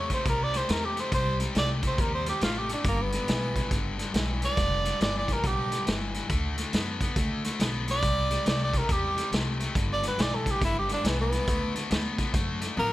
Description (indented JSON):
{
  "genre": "electric blues shuffle",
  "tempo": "139 BPM",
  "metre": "4/4",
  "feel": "swing 64% on 8ths",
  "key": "G major",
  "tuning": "A4 = 440 Hz",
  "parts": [
    { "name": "breathy tenor saxophone", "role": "melody", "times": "0.0-12.9 s", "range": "Bb3 to D5", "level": "-29 LUFS", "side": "right 1 dB", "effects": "plate reverb" },
    { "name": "cranked stack guitar", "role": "riff", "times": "0.0-12.9 s", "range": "G2 to B3", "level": "-33 LUFS", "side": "left 4 dB", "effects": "overdrive" },
    { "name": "upright bass", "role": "bass", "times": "0.0-12.9 s", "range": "F1 to F#2", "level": "-31 LUFS", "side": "equal", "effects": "none" },
    { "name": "vintage drum kit", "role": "drums", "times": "0.1-12.9 s", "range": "hi-hat, kick drum, snare drum, toms", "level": "-29 LUFS", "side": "equal", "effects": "none" }
  ],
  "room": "light reverb",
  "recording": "none",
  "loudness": "-25 LUFS",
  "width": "side -15 dB against mid",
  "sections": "0.0-12.9 A section",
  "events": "tenor saxophone solo 0.0-12.9; drum fill 12.8",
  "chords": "0.0 C; 1.1 Cm; 2.9 G; 6.3 D; 8.0 C; 9.8 G; 11.5 D"
}